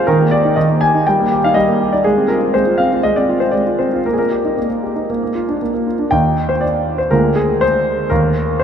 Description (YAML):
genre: classical-period piano sonatina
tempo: 120 BPM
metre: 4/4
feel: straight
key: Eb major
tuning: A4 = 440 Hz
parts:
  - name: clear concert grand piano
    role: solo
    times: 0.0-8.6 s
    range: D2 to Ab5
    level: -13 LUFS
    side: equal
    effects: none
room: wet cathedral reverb, RT60 7.5 s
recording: in a vast, echoing space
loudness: -13 LUFS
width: side -8 dB against mid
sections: 0.0-6.1 A section; 6.1-8.6 B section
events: none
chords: 0.1 Eb; 1.1 Eb/G; 2.0 Fm/Ab; 4.1 Eb/Bb; 5.1 Bb; 6.1 Eb5; 7.1 Bb7/D; 8.1 Eb5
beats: | 0.07 0.56 1.05 1.55 | 2.04 2.54 3.03 3.54 | 4.05 4.57 5.09 5.61 | 6.12 6.63 7.12 7.62 | 8.12 8.61